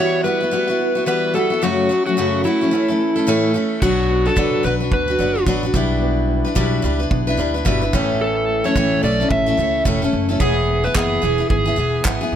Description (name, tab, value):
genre	acoustic pop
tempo	109 BPM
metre	4/4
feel	swing 60% on 16ths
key	unclear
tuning	A4 = 441 Hz
part	overdriven slide guitar	melody	0.0-12.0 s	E4 to E5	-20 LUFS	equal	none
part	picked steel-string acoustic guitar	accompaniment	0.0-12.4 s	F#2 to B4	-20 LUFS	left 2 dB	none
part	nylon-string guitar	arpeggios	0.0-12.4 s	E3 to A4	-27 LUFS	right 6 dB	tape echo
part	upright bass	bass	3.8-12.4 s	E1 to D2	-22 LUFS	right 1 dB	none
part	loose indie drum kit	drums	3.8-12.2 s	crash cymbal, handclaps, kick drum	-23 LUFS	right 1 dB	none
room	light reverb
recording	none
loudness	-16 LUFS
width	side -9 dB against mid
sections	0.0-3.8 A section; 3.8-12.4 B section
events	none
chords	0.0 Emadd9; 1.6 F#m; 2.7 A; 3.8 Bm; 5.7 Em7/B; 7.9 A; 10.4 E